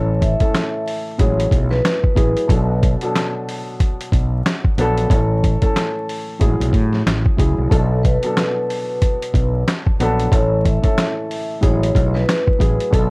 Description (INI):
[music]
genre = hip hop, boom-bap hip-hop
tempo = 92 BPM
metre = 4/4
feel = swing 59% on 16ths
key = B dorian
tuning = A4 = 439 Hz
[part]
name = vibraphone with soft mallets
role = melody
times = 0.0-2.5, 7.7-13.1 s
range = A4 to E5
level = -23 LUFS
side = equal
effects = high-pass filter, low-pass filter, tape echo
[part]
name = dark concert grand piano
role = accompaniment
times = 0.0-13.1 s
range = G#2 to A4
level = -22 LUFS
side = equal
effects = high-pass filter, low-pass filter
[part]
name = fretless electric bass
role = bass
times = 0.0-13.1 s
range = A1 to A2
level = -18 LUFS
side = equal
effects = none
[part]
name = boom bap sampler-style drum kit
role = drums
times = 0.2-13.1 s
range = handclaps, hi-hat, kick drum, snare drum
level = -17 LUFS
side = equal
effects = none
[sound]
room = little or no reverb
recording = worn, warbling old tape, cassette tape, vinyl crackle, warbly pitch drift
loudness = -15 LUFS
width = side -29 dB against mid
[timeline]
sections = 0.0-13.1 A section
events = none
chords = 0.0 A; 1.2 F#m7/A; 2.5 Bm7; 5.1 A; 6.4 F#m7/A; 7.7 Bm7; 10.3 A; 11.6 F#m7/A